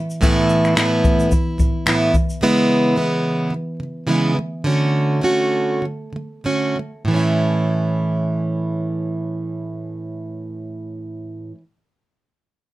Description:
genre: acoustic pop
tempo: 93-110 BPM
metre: 4/4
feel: swing 55% on 16ths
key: A major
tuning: A4 = 439 Hz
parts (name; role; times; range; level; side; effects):
- picked plugged-in steel-string acoustic guitar; accompaniment; 0.0-11.6 s; A2 to F#4; -18 LUFS; right 1 dB; none
- jazz brush drum kit; drums; 0.1-2.4 s; finger snaps, kick drum, shaker; -18 LUFS; equal; none
room: light reverb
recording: none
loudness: -17 LUFS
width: side -17 dB against mid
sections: 0.0-7.1 A section; 7.1-12.2 B section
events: slowing down 2.4-7.1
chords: 0.0 Asus2; 2.4 C#m7; 4.4 Dmaj7; 7.1 A

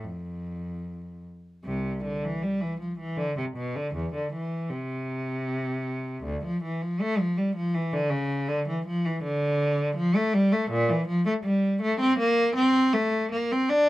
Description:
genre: classical, baroque-style suite movement for unaccompanied cello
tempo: 79 BPM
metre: 3/4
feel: rubato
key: C major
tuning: A4 = 440 Hz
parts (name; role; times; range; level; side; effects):
- rich cello; solo; 0.0-13.9 s; C2 to D4; -24 LUFS; equal; none
room: light reverb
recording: none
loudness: -24 LUFS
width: side -16 dB against mid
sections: 0.0-1.6 A section; 1.6-13.9 A section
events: none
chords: none

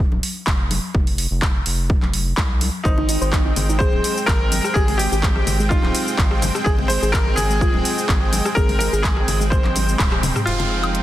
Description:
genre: progressive house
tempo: 126 BPM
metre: 4/4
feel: straight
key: unclear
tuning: A4 = 440 Hz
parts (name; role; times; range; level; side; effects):
- round analog bass; bass; 0.0-11.0 s; Eb1 to C2; -23 LUFS; equal; sidechain pumping
- electronic congas and rim click; percussion; 0.1-10.7 s; none; -28 LUFS; left 3 dB; overdrive, sidechain pumping on perc, sidechain pumping on snare
- house drum kit; drums; 0.2-11.0 s; handclaps, hi-hat, shaker, toms, woodblock; -24 LUFS; equal; overdrive
- electronic kick drum; drums; 0.5-10.1 s; none; -19 LUFS; equal; overdrive
- bright concert grand piano; melody; 2.8-11.0 s; Eb4 to C5; -24 LUFS; equal; tape echo
- supersaw pad; sustained chords; 2.8-11.0 s; F3 to G5; -26 LUFS; right 1 dB; sidechain pumping
- soft round pluck; arpeggios; 2.9-10.4 s; Ab3 to C5; -27 LUFS; equal; wide subtle chorus, sidechain pumping, tape echo
- downlifter; sound effects; 10.5-11.0 s; none; -26 LUFS; right 3 dB; none
room: light reverb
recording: dense, heavily limited modern master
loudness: -16 LUFS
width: side -14 dB against mid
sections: 0.0-10.5 A section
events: band accent 10.0; drum fill 10.1-10.5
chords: 0.0 F5; 2.9 Abmaj7; 10.5 Fm7

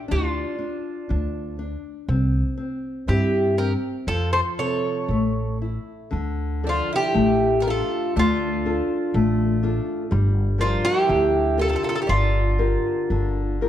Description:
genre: fado-style ballad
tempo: 60 BPM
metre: 2/4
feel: rubato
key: D minor from 6.1 s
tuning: A4 = 440 Hz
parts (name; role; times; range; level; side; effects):
- nylon-string guitar; accompaniment; 0.0-13.7 s; C3 to Bb4; -26 LUFS; left 3 dB; none
- Irish bouzouki; melody; 0.1-13.6 s; F4 to Db5; -24 LUFS; equal; none
- picked twelve-string acoustic guitar; second line; 0.1-13.6 s; D4 to A4; -30 LUFS; right 4 dB; none
- upright bass; bass; 0.1-13.7 s; G1 to G2; -23 LUFS; equal; none
room: light reverb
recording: dark, warm production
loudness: -20 LUFS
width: side -11 dB against mid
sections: 0.0-6.1 A section; 6.1-13.7 B section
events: none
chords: 0.1 Dm; 2.1 C5; 4.1 F; 5.1 A; 6.1 Dm; 10.1 Gm7

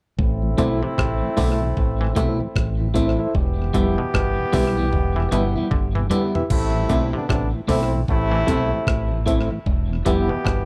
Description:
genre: roots reggae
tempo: 76 BPM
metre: 4/4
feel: swing 61% on 16ths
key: A minor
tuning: A4 = 440 Hz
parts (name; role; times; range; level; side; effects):
- bright trombone section; second line; 0.2-10.7 s; C3 to G4; -28 LUFS; equal; dub echo
- deep dub fingered electric bass; bass; 0.2-10.7 s; E1 to B1; -26 LUFS; equal; none
- breakbeat sampler-style drum kit; drums; 0.2-10.7 s; crash cymbal, hi-hat, kick drum, rim click, toms; -26 LUFS; equal; none
- mellow tonewheel organ; accompaniment; 0.4-10.4 s; E2 to E4; -32 LUFS; equal; none
- electric guitar at the edge of break-up; accompaniment; 0.6-10.3 s; G3 to E4; -29 LUFS; equal; dub echo
- muted clav; arpeggios; 0.6-10.6 s; B2 to E3; -32 LUFS; equal; none
- reed electric piano; stabs; 0.6-10.3 s; E4 to E5; -28 LUFS; equal; fast tremolo
room: little or no reverb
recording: dry, close 1970s-style studio recording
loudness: -21 LUFS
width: mono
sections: 0.2-6.5 A section; 6.5-10.7 B section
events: drum fill 4.9-6.5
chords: 0.2 Am; 3.3 Em; 6.5 Am; 9.7 Em

